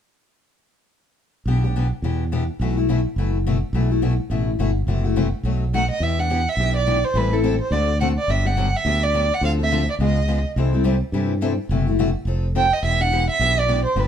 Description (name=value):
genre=acoustic string swing (jazz manouche)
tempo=211 BPM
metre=4/4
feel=swing 59% on 8ths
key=E minor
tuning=A4 = 439 Hz
part: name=picked steel-string acoustic guitar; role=accompaniment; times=1.5-14.1 s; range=B2 to A4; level=-24 LUFS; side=left 5 dB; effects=none
part: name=modern bright fingered electric bass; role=bass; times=1.5-14.1 s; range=E1 to G2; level=-21 LUFS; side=right 1 dB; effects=none
part: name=warm violin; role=melody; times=5.7-10.4, 12.6-14.1 s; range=A4 to G5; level=-21 LUFS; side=right 3 dB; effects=none
room=moderate studio reverb, RT60 0.7 s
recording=band playing live in one room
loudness=-18 LUFS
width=side -9 dB against mid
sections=1.5-6.0 A section; 6.0-14.1 B section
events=none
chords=1.5 Em7/B; 2.6 B7sus4; 4.9 F#m7b5; 5.4 B7; 6.0 Em7; 7.1 Am7; 7.7 D7; 8.3 Gmaj7; 9.4 Dm7; 10.0 C#9; 10.6 C6; 11.7 F#m7b5; 12.3 F7; 12.8 Em7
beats=| 1.46 1.75 2.03 2.31 | 2.60 2.88 3.17 3.45 | 3.73 4.02 4.30 4.59 | 4.87 5.16 5.44 5.72 | 6.01 6.29 6.58 6.86 | 7.14 7.43 7.71 8.00 | 8.28 8.56 8.85 9.13 | 9.42 9.70 9.98 10.27 | 10.55 10.84 11.12 11.40 | 11.69 11.97 12.26 12.54 | 12.82 13.11 13.39 13.68 | 13.96